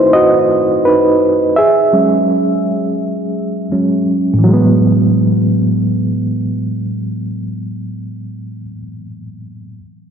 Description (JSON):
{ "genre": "hip hop", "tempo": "84 BPM", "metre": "4/4", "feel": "swing 57% on 16ths", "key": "F# dorian", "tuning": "A4 = 440 Hz", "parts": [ { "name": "reed electric piano", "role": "accompaniment", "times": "0.0-9.8 s", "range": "A2 to E5", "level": "-12 LUFS", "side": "right 1 dB", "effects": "fast tremolo, cassette tape, low-pass filter" } ], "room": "wet plate reverb, RT60 3.4 s", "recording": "dreamy mix soaked in reverb, cassette tape", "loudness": "-11 LUFS", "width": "side -7 dB against mid", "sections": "0.0-4.4 A section; 4.4-7.3 B section", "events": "reed electric piano solo 0.0-4.4", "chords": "0.0 B7b9; 1.6 E69; 4.4 F#m11", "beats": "0.14 0.85 | 1.56 2.28 2.99 3.71 | 4.42 5.13 5.85 6.56" }